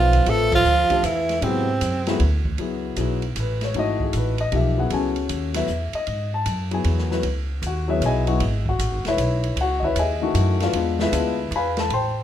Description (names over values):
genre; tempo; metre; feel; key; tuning
modal jazz; 155 BPM; 3/4; swing 65% on 8ths; C# minor; A4 = 440 Hz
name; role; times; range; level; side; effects
clear tenor saxophone; melody; 0.0-2.2 s; B#3 to A4; -20 LUFS; right 2 dB; none
breathy trombone; second line; 0.0-2.2 s; B#2 to A3; -27 LUFS; right 7 dB; none
dark concert grand piano; accompaniment; 0.0-12.2 s; D#3 to C6; -24 LUFS; left 4 dB; none
upright bass; bass; 0.0-12.2 s; E1 to G#2; -23 LUFS; equal; none
open jazz drum kit; drums; 0.1-12.0 s; crash cymbal, hi-hat, kick drum, ride cymbal, snare drum; -30 LUFS; right 2 dB; none
room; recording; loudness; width
moderate club reverb, RT60 0.8 s; minimal, uncompressed stereo recording; -20 LUFS; side -10 dB against mid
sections
0.0-2.6 A section; 2.6-11.9 B section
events
band accent 0.5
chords
0.0 Amadd9; 1.4 G#7alt; 2.6 C#m9; 10.7 E7b9